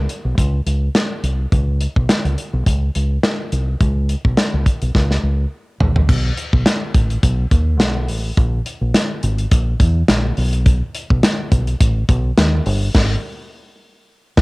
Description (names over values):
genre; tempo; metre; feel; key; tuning
1980s-style pop; 105 BPM; 4/4; swing 55% on 16ths; unclear; A4 = 441 Hz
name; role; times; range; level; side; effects
deep dub fingered electric bass; bass; 0.0-14.4 s; G1 to E2; -18 LUFS; equal; none
modern studio drum kit; drums; 0.1-14.4 s; crash cymbal, hi-hat, kick drum, snare drum, toms; -16 LUFS; equal; cassette tape
room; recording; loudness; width
light reverb; home recording on cassette; -15 LUFS; side -25 dB against mid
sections
0.0-6.1 A section; 6.1-14.4 B section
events
drum fill 4.9-6.1; band accent 12.9-14.4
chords
none